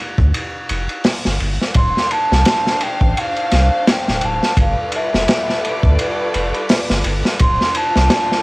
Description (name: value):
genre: trip hop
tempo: 85 BPM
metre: 4/4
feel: swing 57% on 16ths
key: unclear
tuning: A4 = 440 Hz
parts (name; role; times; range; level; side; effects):
- soft dub sub bass; bass; 0.2-8.1 s; D1 to D2; -17 LUFS; equal; transformer saturation
- crunchy breakbeat drum kit; drums; 0.2-8.4 s; hi-hat, kick drum, ride cymbal, snare drum; -17 LUFS; equal; cassette tape
- mellow hollow baroque flute; melody; 1.8-8.4 s; E5 to C6; -20 LUFS; equal; cassette tape, dub echo
- clear symphonic violin section; sustained chords; 1.8-8.4 s; G3 to F5; -24 LUFS; equal; cassette tape
room: light reverb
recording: home recording on cassette, vinyl crackle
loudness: -14 LUFS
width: side -23 dB against mid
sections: 0.0-8.4 A section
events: none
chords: 0.0 G5; 1.7 Dm7; 4.6 G13; 7.4 Dm7